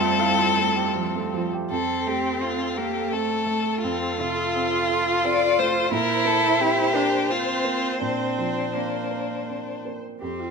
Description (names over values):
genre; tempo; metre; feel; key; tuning
neoclassical piano and strings; 85 BPM; 3/4; uneven beats, rubato; F major; A4 = 440 Hz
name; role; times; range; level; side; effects
rich violin; melody; 0.0-9.8 s; D4 to D5; -25 LUFS; left 7 dB; none
clear cello; second line; 0.0-10.5 s; G3 to F4; -25 LUFS; right 3 dB; none
clear viola; accompaniment; 0.0-10.5 s; C4 to C5; -31 LUFS; right 1 dB; none
warm upright piano; accompaniment; 0.0-10.5 s; F2 to F5; -30 LUFS; right 4 dB; none
room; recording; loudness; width
moderate large studio reverb, RT60 1.2 s; minimal, uncompressed stereo recording; -21 LUFS; side -5 dB against mid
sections
0.0-1.7 A section; 1.7-10.5 B section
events
none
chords
0.0 Fadd9; 1.7 F; 5.9 Bbadd9